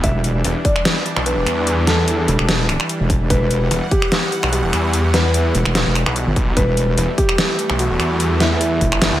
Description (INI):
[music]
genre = heavy wobble dubstep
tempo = 147 BPM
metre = 4/4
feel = half-time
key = E minor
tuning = A4 = 439 Hz
[part]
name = felt-muted upright piano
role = melody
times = 0.0-9.2 s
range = E4 to E5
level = -23 LUFS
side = equal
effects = dub echo
[part]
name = supersaw pad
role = sustained chords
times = 0.0-9.2 s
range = E3 to F#5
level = -25 LUFS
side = right 1 dB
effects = sidechain pumping
[part]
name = snarling distorted saw bass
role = bass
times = 0.0-9.2 s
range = E1 to E2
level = -18 LUFS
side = equal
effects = distortion, overdrive
[part]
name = wobble bass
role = bass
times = 0.0-8.9 s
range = E1 to G1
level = -18 LUFS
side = equal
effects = chorus, overdrive
[part]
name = dubstep drum kit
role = drums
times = 0.0-9.1 s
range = finger snaps, hi-hat, snare drum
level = -20 LUFS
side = equal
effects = overdrive
[part]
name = electronic kick drum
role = drums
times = 0.0-8.9 s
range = none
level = -20 LUFS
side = equal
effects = none
[sound]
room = little or no reverb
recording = none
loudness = -15 LUFS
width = side -13 dB against mid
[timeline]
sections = 0.0-9.2 A section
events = kick drops out 9.0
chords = 0.0 Emadd9